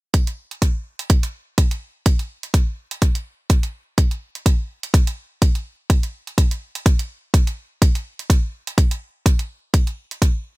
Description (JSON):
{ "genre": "piano house", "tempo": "125 BPM", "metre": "4/4", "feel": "swing 56% on 16ths", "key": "none", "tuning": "none", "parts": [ { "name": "electronic hi-hat", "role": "drums", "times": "0.1-10.3 s", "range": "none", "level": "-27 LUFS", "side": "right 5 dB", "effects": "none" }, { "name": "electronic kick drum", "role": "drums", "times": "0.1-10.3 s", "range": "none", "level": "-16 LUFS", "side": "equal", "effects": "none" } ], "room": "little or no reverb", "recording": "bright 1980s-style digital production", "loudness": "-18 LUFS", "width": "side -22 dB against mid", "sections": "0.1-10.6 A section", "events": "none", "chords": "none", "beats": "| 0.14 0.62 1.10 1.58 | 2.06 2.54 3.02 3.50 | 3.98 4.46 4.94 5.42 | 5.90 6.38 6.86 7.34 | 7.82 8.30 8.78 9.26 | 9.74 10.22" }